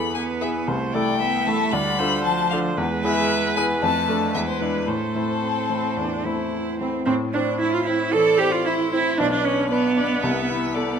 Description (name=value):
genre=quick classical-period movement for piano quartet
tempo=114 BPM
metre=4/4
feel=rubato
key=A minor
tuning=A4 = 440 Hz
part: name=clear violin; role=melody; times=0.0-11.0 s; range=A4 to B5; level=-26 LUFS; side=left 9 dB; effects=none
part: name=clear cello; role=second line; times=0.0-11.0 s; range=F3 to A4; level=-27 LUFS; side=right 8 dB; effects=none
part: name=clear baby grand piano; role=accompaniment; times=0.0-11.0 s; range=B1 to B4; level=-24 LUFS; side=left 2 dB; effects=none
part: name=clear viola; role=accompaniment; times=0.0-11.0 s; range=B3 to E5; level=-25 LUFS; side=right 3 dB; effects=none
room=moderate recital hall reverb, RT60 1.6 s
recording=close, detailed microphones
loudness=-20 LUFS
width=side -7 dB against mid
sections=0.0-7.1 A section; 7.1-11.0 B section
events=none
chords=0.0 E; 0.7 Am/C; 1.7 Dm; 2.8 E; 3.8 Dm/F; 4.3 E7; 4.9 Am; 9.2 Bmadd9; 10.2 Am/C